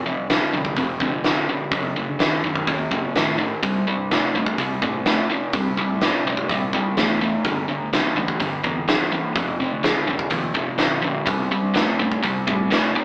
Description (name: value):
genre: blues rock power trio and southern rock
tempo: 126 BPM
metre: 4/4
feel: straight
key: C mixolydian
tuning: A4 = 440 Hz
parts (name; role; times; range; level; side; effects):
- sludgy distorted guitar; riff; 0.0-13.0 s; F2 to A3; -25 LUFS; equal; overdrive
- fingered electric bass; bass; 0.2-12.7 s; F1 to D3; -35 LUFS; equal; none
- huge arena drum kit; drums; 0.3-12.8 s; hi-hat, kick drum, snare drum; -25 LUFS; equal; none
room: light reverb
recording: band playing live in one room, AM radio sound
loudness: -22 LUFS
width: mono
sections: 0.0-13.0 A section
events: none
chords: 0.0 F5; 1.7 F#m6; 3.6 C5; 7.4 G5; 9.4 F5; 11.3 C5